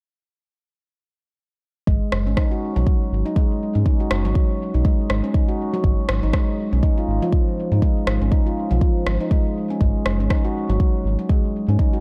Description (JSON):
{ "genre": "afro house", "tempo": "121 BPM", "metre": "4/4", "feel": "swing 58% on 16ths", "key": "G# dorian", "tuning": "A4 = 439 Hz", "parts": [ { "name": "handpan", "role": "arpeggios", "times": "1.9-12.0 s", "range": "E#3 to F#4", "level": "-26 LUFS", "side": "equal", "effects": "sidechain pumping, tape echo" }, { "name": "round analog bass", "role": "bass", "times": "1.9-11.8 s", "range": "F#1 to G#2", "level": "-22 LUFS", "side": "equal", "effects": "sidechain pumping" }, { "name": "electronic kick drum", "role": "drums", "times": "1.9-11.9 s", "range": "none", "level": "-21 LUFS", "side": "equal", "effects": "none" }, { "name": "electronic rim click", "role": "drums", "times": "2.1-10.4 s", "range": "none", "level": "-30 LUFS", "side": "equal", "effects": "none" } ], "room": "little or no reverb", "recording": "dry, gritty hardware recording", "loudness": "-20 LUFS", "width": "mono", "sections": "1.9-12.0 A section", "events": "none", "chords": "none", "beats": "| 1.88 2.37 2.87 3.36 | 3.86 4.35 4.85 5.35 | 5.84 6.34 6.83 7.33 | 7.83 8.32 8.82 9.31 | 9.81 10.30 10.80 11.30 | 11.79" }